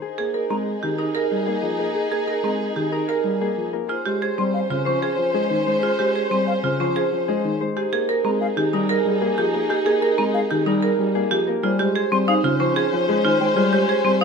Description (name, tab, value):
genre	classical, minimalist pattern music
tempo	186 BPM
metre	6/4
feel	straight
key	F minor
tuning	A4 = 440 Hz
part	Celtic harp	melody	0.0-14.2 s	Ab4 to F5	-28 LUFS	left 10 dB	none
part	mellow French horn	second line	0.0-14.2 s	Ab4 to C5	-27 LUFS	right 2 dB	none
part	warm studio violin section	sustained chords	0.0-14.2 s	Db4 to C5	-28 LUFS	left 3 dB	none
part	dark grand piano	accompaniment	0.2-14.2 s	Db3 to Bb3	-24 LUFS	left 3 dB	none
part	marimba with hard mallets	arpeggios	0.2-14.2 s	C4 to Bb4	-24 LUFS	right 8 dB	none
part	hollow concert flute	arpeggios	0.5-14.2 s	F5 to C6	-26 LUFS	left 4 dB	none
room	light reverb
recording	minimal, uncompressed stereo recording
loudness	-19 LUFS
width	side -5 dB against mid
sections	0.0-14.2 A section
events	none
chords	0.0 Fm9; 3.9 Dbmaj7; 7.8 Fm9; 11.6 Dbmaj9